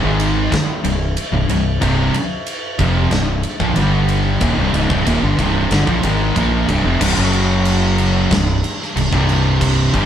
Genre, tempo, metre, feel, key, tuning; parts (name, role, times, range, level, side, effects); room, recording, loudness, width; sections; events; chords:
stoner and doom metal; 92 BPM; 4/4; straight; C minor; A4 = 439 Hz
thick fuzz guitar; riff; 0.0-10.1 s; C2 to Bb3; -21 LUFS; left 5 dB; distortion
thick fuzz guitar; riff; 0.0-10.1 s; C2 to Bb3; -20 LUFS; right 5 dB; distortion
tight distorted guitar; riff; 0.0-10.1 s; C2 to Bb3; -22 LUFS; left 1 dB; distortion
growling fingered electric bass; bass; 0.0-10.1 s; C1 to Bb1; -20 LUFS; equal; overdrive
big rock drum kit; drums; 0.2-10.1 s; crash cymbal, kick drum, ride cymbal, snare drum; -21 LUFS; equal
moderate studio reverb, RT60 0.7 s; band playing live in one room; -14 LUFS; side -9 dB against mid
0.0-7.0 A section; 7.0-10.1 B section
0.0 Cm; 3.8 G5; 4.4 Cm; 7.0 C5; 7.2 F#5; 8.3 C5